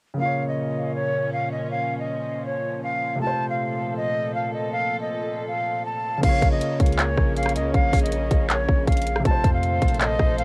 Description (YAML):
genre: hip hop, trap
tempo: 159 BPM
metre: 4/4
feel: half-time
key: Bb harmonic minor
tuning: A4 = 440 Hz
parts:
  - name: dark grand piano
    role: accompaniment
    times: 0.1-10.4 s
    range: C3 to Db5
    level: -32 LUFS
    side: equal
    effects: none
  - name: breathy silver concert flute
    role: melody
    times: 0.2-10.4 s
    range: Db5 to A5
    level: -28 LUFS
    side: equal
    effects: cassette tape, tape echo
  - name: dark studio string section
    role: sustained chords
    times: 0.2-10.4 s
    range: Bb2 to C5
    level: -34 LUFS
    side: equal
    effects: none
  - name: hard-hitting 808-style bass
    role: bass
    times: 6.2-10.4 s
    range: Bb1 to F2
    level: -29 LUFS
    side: equal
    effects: none
  - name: trap drum kit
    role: drums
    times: 6.2-10.4 s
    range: crash cymbal, handclaps, hi-hat, kick drum, rim click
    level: -23 LUFS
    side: equal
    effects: none
room: light reverb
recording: home recording on cassette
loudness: -23 LUFS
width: mono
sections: 0.2-6.2 A section; 6.2-10.4 B section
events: none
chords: 0.2 Bbm; 3.2 F/Bb; 6.2 Bbm; 9.3 F/Bb